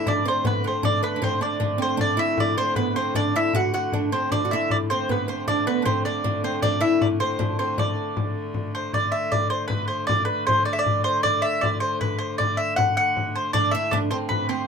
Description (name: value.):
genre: medieval dance.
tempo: 104 BPM (dotted quarters).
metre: 6/8.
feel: straight.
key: D mixolydian.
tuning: A4 = 440 Hz.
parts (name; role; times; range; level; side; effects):
mandolin; melody; 0.0-14.7 s; B4 to F#5; -23 LUFS; equal; none.
oud; second line; 0.0-8.7, 13.5-14.7 s; B3 to F#4; -27 LUFS; right 2 dB; none.
warm hurdy-gurdy; drone; 0.0-14.7 s; D3 to A3; -32 LUFS; left 1 dB; none.
frame drum; percussion; 0.1-14.5 s; none; -28 LUFS; left 3 dB; none.
room: light reverb.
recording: minimal, uncompressed stereo recording.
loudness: -21 LUFS.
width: side -6 dB against mid.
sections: 0.0-8.9 A section; 8.9-14.7 A section.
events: none.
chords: none.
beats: 0.26 | 0.84 1.42 | 2.00 2.58 | 3.15 3.73 | 4.31 4.89 | 5.47 6.05 | 6.63 7.20 | 7.78 8.36 | 8.94 9.51 | 10.09 10.67 | 11.24 11.82 | 12.39 12.97 | 13.55 14.12.